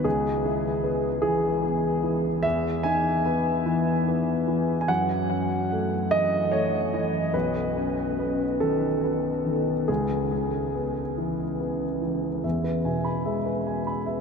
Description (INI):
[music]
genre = neoclassical minimalist piano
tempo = 46-51 BPM (dotted quarters)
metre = 6/8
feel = rubato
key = E major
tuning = A4 = 440 Hz
[part]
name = dark baby grand piano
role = solo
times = 0.0-14.2 s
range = B1 to B5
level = -23 LUFS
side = equal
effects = ping-pong delay
[sound]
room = wet huge ambient reverb, RT60 9.1 s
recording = dreamy mix soaked in reverb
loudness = -23 LUFS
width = side -5 dB against mid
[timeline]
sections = 0.0-12.4 A section; 12.4-14.2 B section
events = none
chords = 0.1 C#m7; 2.4 Emaj7; 4.9 F#m7; 7.3 Badd9; 9.9 C#m7; 12.4 E